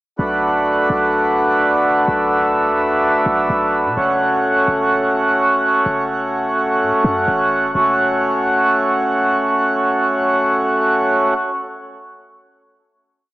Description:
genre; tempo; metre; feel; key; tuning
hip hop; 127 BPM; 4/4; half-time; F# minor; A4 = 440 Hz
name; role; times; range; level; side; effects
mellow accordion; sustained chords; 0.2-11.3 s; A3 to F#5; -14 LUFS; equal; none
clean 808-style bass; bass; 0.2-9.6 s; F#1 to B2; -28 LUFS; equal; none
room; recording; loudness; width
wet lush hall reverb, RT60 2.0 s; dreamy mix soaked in reverb, small speaker sound; -14 LUFS; side -17 dB against mid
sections
0.2-7.8 verse; 7.8-11.5 final chord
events
none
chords
0.2 Bm7; 4.0 F#m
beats
| 0.19 0.66 1.14 1.61 | 2.08 2.55 3.03 3.50 | 3.97 4.44 4.92 5.39 | 5.86 6.33 6.81 7.28 | 7.75 8.22 8.70 9.17 | 9.64 10.11 10.59 11.06

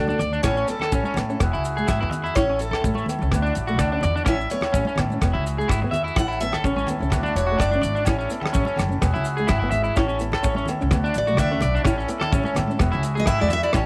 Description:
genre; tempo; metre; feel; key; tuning
highlife guitar band; 126 BPM; 4/4; swing 54% on 16ths; A major; A4 = 443 Hz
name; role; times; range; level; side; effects
picked steel-string acoustic guitar; melody; 0.0-8.0, 11.2-13.9 s; F#4 to F#5; -28 LUFS; equal; none
electric guitar at the edge of break-up; arpeggios; 0.0-13.9 s; A3 to E5; -29 LUFS; equal; tape echo
upright bass; bass; 0.0-13.9 s; E1 to A2; -27 LUFS; equal; none
nylon-string guitar; accompaniment; 0.1-13.9 s; G#3 to E4; -32 LUFS; equal; none
congas; percussion; 0.1-13.6 s; none; -34 LUFS; equal; none
maracas; percussion; 0.1-13.9 s; none; -44 LUFS; equal; none
damped 70s drum kit; drums; 0.2-13.9 s; hi-hat, kick drum, rim click; -27 LUFS; equal; none
accordion; sustained chords; 0.5-13.9 s; C#4 to A4; -34 LUFS; equal; none
agogo bells; percussion; 0.5-13.9 s; none; -36 LUFS; equal; none
room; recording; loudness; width
light reverb, studio reverb; none; -22 LUFS; mono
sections
0.4-13.9 A section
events
steel-string acoustic guitar solo 0.4-13.9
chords
0.4 A; 1.4 Eadd9; 2.4 A; 3.3 Dadd9; 4.3 A; 5.2 Eadd9; 6.2 A; 7.1 Dadd9; 8.1 A; 9.0 Eadd9; 10.0 A; 10.9 Dadd9; 11.9 A; 12.8 Eadd9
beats
| 0.44 0.92 1.40 1.88 | 2.35 2.83 3.31 3.79 | 4.26 4.74 5.22 5.69 | 6.17 6.64 7.12 7.60 | 8.07 8.55 9.02 9.49 | 9.97 10.44 10.92 11.39 | 11.86 12.34 12.81 13.28 | 13.76

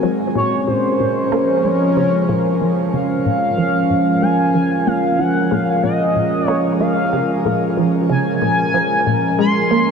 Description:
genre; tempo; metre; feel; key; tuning
ambient, sequencer-driven space music; 93 BPM; 4/4; straight; Bb minor; A4 = 440 Hz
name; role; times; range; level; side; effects
sweeping resonant pad; sustained chords; 0.0-9.9 s; F3 to Ab5; -18 LUFS; right 1 dB; chorus, shimmer reverb
resonant blip pluck; riff; 0.0-9.9 s; Bb2 to Bb3; -21 LUFS; equal; phaser, lush chorus, shimmer reverb, analog delay
expressive synth lead; melody; 0.4-9.9 s; C5 to C6; -19 LUFS; left 1 dB; analog chorus, shimmer reverb, analog delay
room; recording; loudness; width
wet huge ambient reverb, RT60 8.1 s; cassette tape; -14 LUFS; side -6 dB against mid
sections
0.0-9.9 A section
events
none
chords
0.4 Bbm7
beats
| 0.35 1.00 1.65 2.29 | 2.94 3.58 4.23 4.87 | 5.52 6.16 6.81 7.45 | 8.10 8.74 9.39

